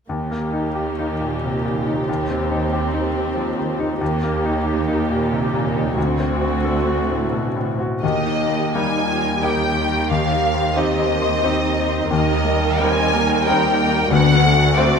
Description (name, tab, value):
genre	cinematic, emotional film score for orchestra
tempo	82-95 BPM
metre	3/4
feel	rubato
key	Eb major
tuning	A4 = 440 Hz
part	bright grand piano	accompaniment	0.1-15.0 s	D2 to C5	-22 LUFS	left 2 dB	none
part	rich studio viola section	accompaniment	0.1-15.0 s	G3 to Bb4	-24 LUFS	right 3 dB	none
part	rich symphonic cello section	bass	0.1-15.0 s	D2 to Eb2	-23 LUFS	right 4 dB	none
part	rich studio violin section	melody	8.0-15.0 s	D5 to Ab5	-20 LUFS	left 1 dB	none
part	concert harp	arpeggios	8.0-15.0 s	D3 to C6	-23 LUFS	left 7 dB	none
room	wet concert hall reverb, RT60 1.8 s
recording	none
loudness	-17 LUFS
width	side -6 dB against mid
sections	0.1-8.0 A section; 8.0-15.0 B section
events	none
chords	0.1 Eb; 2.1 Cm/Eb; 4.0 Eb; 6.0 D7; 8.0 Eb; 10.1 Cm/Eb; 14.1 D7